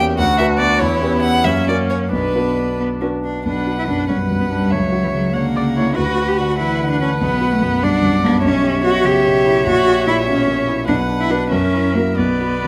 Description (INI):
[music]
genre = quick classical-period movement for piano quartet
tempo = 88-100 BPM (dotted quarters)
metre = 6/8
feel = rubato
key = B minor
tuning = A4 = 440 Hz
[part]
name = rich violin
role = melody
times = 0.0-12.7 s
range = B4 to F#5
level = -26 LUFS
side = equal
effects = none
[part]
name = rich cello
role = second line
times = 0.0-12.7 s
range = E3 to G4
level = -21 LUFS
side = equal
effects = none
[part]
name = rich viola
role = accompaniment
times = 0.0-12.7 s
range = C#4 to D5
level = -25 LUFS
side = equal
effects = none
[part]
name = warm concert grand piano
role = accompaniment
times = 0.0-12.7 s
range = A#1 to B4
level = -21 LUFS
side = equal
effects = none
[sound]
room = moderate recital hall reverb, RT60 1.4 s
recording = close, detailed microphones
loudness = -17 LUFS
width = mono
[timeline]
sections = 0.0-3.5 A section; 3.5-12.7 B section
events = none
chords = 0.2 Bm/D; 0.8 C#m7b5/E; 1.5 F#; 2.1 Bm; 4.7 F#7/C#; 6.0 Bm/D; 7.2 Bm; 8.4 C#m7b5/B; 9.7 A#dim7; 10.9 Bm; 11.5 F#7